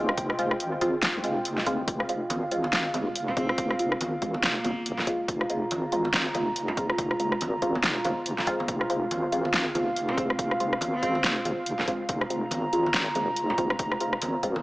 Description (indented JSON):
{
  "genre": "deep dubstep",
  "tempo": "141 BPM",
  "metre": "4/4",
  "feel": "swing 58% on 16ths, half-time",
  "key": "F minor",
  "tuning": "A4 = 441 Hz",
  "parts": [
    { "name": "dark analog pad", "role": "sustained chords", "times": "0.0-14.6 s", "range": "F4 to Bb5", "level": "-32 LUFS", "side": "right 1 dB", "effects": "chorus" },
    { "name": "filtered dub chord stab", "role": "stabs", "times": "0.0-14.6 s", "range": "Ab3 to F4", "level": "-30 LUFS", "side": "equal", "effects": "phaser, analog chorus, dub echo" },
    { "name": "deep soft wobble bass", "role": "bass", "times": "0.0-14.6 s", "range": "Eb1 to C2", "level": "-33 LUFS", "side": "equal", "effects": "chorus, tube saturation" },
    { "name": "deep house drum kit", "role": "drums", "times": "0.1-14.5 s", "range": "hi-hat, rim click, snare drum", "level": "-28 LUFS", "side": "equal", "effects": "overdrive" },
    { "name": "electronic kick drum", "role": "drums", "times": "0.2-14.5 s", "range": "none", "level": "-34 LUFS", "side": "equal", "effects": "overdrive" },
    { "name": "congas", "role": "percussion", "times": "2.3-14.6 s", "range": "none", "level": "-36 LUFS", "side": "equal", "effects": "dub echo" },
    { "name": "rich cello", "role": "melody", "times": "3.3-5.0, 10.1-11.4 s", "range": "Bb3 to C4", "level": "-36 LUFS", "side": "equal", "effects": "dub echo" }
  ],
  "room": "moderate echo chamber reverb, RT60 1.8 s",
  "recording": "small speaker sound",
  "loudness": "-24 LUFS",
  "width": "side -19 dB against mid",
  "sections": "0.0-14.6 A section",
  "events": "none",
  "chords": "0.0 Fm"
}